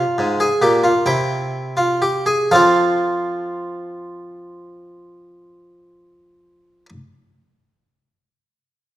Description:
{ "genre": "classical, baroque-style 3-part fugue for harpsichord", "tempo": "39 BPM (dotted quarters)", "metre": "6/8", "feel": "straight", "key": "unclear", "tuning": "A4 = 440 Hz", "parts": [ { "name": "harpsichord", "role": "solo", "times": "0.0-6.9 s", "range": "Ab2 to G5", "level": "-16 LUFS", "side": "equal", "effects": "none" } ], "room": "moderate recital hall reverb, RT60 1.4 s", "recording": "none", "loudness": "-15 LUFS", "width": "side -14 dB against mid", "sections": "0.0-2.5 A section; 2.5-8.6 B section", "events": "slowing down 0.0-2.5", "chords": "0.0 Fm; 1.1 C; 2.5 F" }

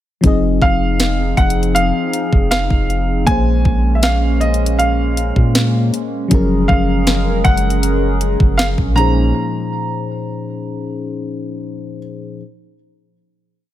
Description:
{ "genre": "contemporary R&B", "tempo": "79 BPM", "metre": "4/4", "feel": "straight", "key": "Bb minor", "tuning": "A4 = 440 Hz", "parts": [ { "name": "mellow FM electric piano", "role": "accompaniment", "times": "0.2-12.4 s", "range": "Bb2 to Eb5", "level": "-21 LUFS", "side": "left 4 dB", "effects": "chorus" }, { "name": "hollow soft pad", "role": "sustained chords", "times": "0.2-9.3 s", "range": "F3 to Bb4", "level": "-22 LUFS", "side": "right 2 dB", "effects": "chorus, sidechain pumping" }, { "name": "soft 808-style bass", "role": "bass", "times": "0.2-9.3 s", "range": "F1 to Bb2", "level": "-17 LUFS", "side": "equal", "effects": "none" }, { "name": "trap drum kit", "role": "drums", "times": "0.2-9.2 s", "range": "hi-hat, kick drum, snare drum", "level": "-16 LUFS", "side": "equal", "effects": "none" }, { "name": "warm baby grand piano", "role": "melody", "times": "0.6-12.0 s", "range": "Eb5 to Bb5", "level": "-21 LUFS", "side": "right 1 dB", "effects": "ping-pong delay" } ], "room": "light reverb", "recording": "none", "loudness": "-13 LUFS", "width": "side -12 dB against mid", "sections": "0.2-12.4 chorus", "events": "none", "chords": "0.2 Fm7; 3.3 Bbm9; 6.3 Gbmaj9; 9.0 Bbm11" }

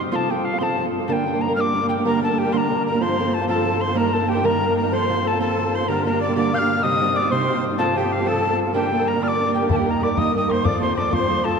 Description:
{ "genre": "celtic folk, Celtic jig", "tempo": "126 BPM (dotted quarters)", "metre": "6/8", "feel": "straight", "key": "unclear", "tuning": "A4 = 440 Hz", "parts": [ { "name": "fingerpicked acoustic archtop guitar", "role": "accompaniment", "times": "0.0-11.6 s", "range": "G2 to Bb4", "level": "-21 LUFS", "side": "right 2 dB", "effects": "none" }, { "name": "rich cello", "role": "drone", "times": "0.0-11.6 s", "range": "G2", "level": "-30 LUFS", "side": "left 1 dB", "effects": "none" }, { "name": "breathy mellow mid whistle", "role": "melody", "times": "0.1-11.6 s", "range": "F5 to G6", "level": "-23 LUFS", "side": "left 2 dB", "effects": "none" }, { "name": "musette accordion", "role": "second line", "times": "2.1-11.6 s", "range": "G4 to F5", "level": "-27 LUFS", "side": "left 1 dB", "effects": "none" }, { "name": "bodhran", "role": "percussion", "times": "9.7-11.5 s", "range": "none", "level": "-26 LUFS", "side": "left 4 dB", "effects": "none" } ], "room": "wet cathedral reverb, RT60 5.8 s", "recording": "recorded in a church or concert hall", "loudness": "-18 LUFS", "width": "side -5 dB against mid", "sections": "0.0-2.0 A section; 2.0-9.7 A section; 9.7-11.6 B section", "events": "none", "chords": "0.1 F; 1.1 Gm; 3.0 F; 4.0 Eb; 4.9 F; 5.9 Gm; 6.8 Cm; 7.8 F; 8.7 Gm; 9.7 Eb; 10.6 F" }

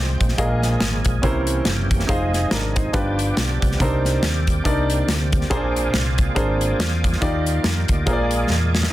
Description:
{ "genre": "uptempo gospel", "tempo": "140 BPM", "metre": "4/4", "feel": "swing 57% on 8ths", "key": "unclear", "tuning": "A4 = 441 Hz", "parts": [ { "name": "overdriven tonewheel organ", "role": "sustained chords", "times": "0.0-8.9 s", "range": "C3 to G5", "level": "-28 LUFS", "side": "right 2 dB", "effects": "slow rotary speaker, chorus vibrato" }, { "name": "fingered electric bass", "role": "bass", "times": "0.0-8.9 s", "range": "F1 to F2", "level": "-23 LUFS", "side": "equal", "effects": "none" }, { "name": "modern studio drum kit", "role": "drums", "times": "0.2-8.9 s", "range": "hi-hat, kick drum, snare drum", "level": "-22 LUFS", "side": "equal", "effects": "none" }, { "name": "clear baby grand piano", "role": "accompaniment", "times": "0.4-8.9 s", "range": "G2 to Eb5", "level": "-23 LUFS", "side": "equal", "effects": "none" } ], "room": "light reverb, studio reverb", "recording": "dense, heavily limited modern master", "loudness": "-18 LUFS", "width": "side -15 dB against mid", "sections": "0.0-8.9 A section", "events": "drum fill 8.5-8.9", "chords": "0.4 Bb7sus4; 1.2 C7b9; 2.1 Fm7; 2.9 G7; 3.8 Cm9; 5.5 Bb9; 7.2 Ebmaj9; 8.1 Bb7" }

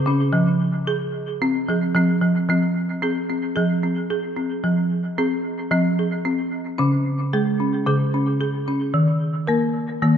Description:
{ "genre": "world meditative, meditative tuned percussion", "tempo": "112 BPM", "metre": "4/4", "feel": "straight", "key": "F minor", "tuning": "A4 = 442 Hz", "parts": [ { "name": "folk marimba with hard mallets", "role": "solo", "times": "0.0-10.2 s", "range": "Db3 to Bb4", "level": "-19 LUFS", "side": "equal", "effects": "diffuse ambient delay" } ], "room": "wet scoring stage reverb, RT60 1.7 s", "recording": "dark, warm production", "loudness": "-19 LUFS", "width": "side -8 dB against mid", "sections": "0.0-2.5 A section; 2.5-10.2 B section", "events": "none", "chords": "0.3 Fm; 6.8 Db5; 8.9 Eb5" }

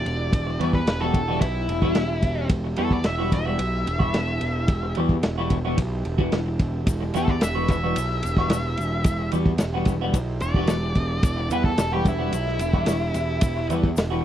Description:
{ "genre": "psychedelic rock", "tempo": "110 BPM", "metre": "4/4", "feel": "straight", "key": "E minor", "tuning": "A4 = 439 Hz", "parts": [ { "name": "octave-fuzz lead guitar", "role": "melody", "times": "0.0-13.7 s", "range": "E4 to E5", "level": "-28 LUFS", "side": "left 1 dB", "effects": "distortion, slapback echo" }, { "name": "combo organ", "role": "sustained chords", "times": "0.0-14.2 s", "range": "E4 to G4", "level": "-35 LUFS", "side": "right 9 dB", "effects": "wide subtle chorus" }, { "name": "fuzz picked electric bass", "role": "bass", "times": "0.1-14.2 s", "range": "E1 to E2", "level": "-26 LUFS", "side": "equal", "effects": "overdrive" }, { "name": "vintage drum kit", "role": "drums", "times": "0.1-14.1 s", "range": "kick drum, ride cymbal, snare drum", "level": "-23 LUFS", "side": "equal", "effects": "none" }, { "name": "twelve-string electric guitar", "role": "riff", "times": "0.5-14.2 s", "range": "E3 to F#4", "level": "-26 LUFS", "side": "left 1 dB", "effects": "phaser, double-tracked left and right" }, { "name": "tube shaker", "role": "percussion", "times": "6.9-14.1 s", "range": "none", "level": "-41 LUFS", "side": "left 14 dB", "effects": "none" } ], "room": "little or no reverb", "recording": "dry, close 1970s-style studio recording", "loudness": "-21 LUFS", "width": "side -11 dB against mid", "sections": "0.0-14.2 A section", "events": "lead electric guitar solo 0.0-14.2", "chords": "0.0 Emadd9" }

